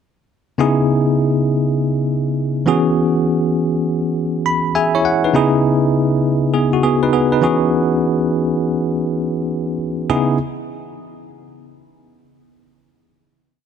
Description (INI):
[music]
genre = R&B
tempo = 101 BPM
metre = 4/4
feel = swing 65% on 16ths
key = C# minor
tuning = A4 = 439 Hz
[part]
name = bell-like tine electric piano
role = solo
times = 0.6-10.4 s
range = C#3 to B5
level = -15 LUFS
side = equal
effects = medium stereo tremolo
[sound]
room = moderate plate reverb, RT60 3.3 s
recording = none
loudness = -15 LUFS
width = side -8 dB against mid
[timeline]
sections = 0.6-10.1 verse; 10.1-12.5 final chord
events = tine electric piano fill 4.2-5.3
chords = 0.6 C#m9; 2.7 E6; 5.3 C#m9; 7.4 E6; 10.1 C#m9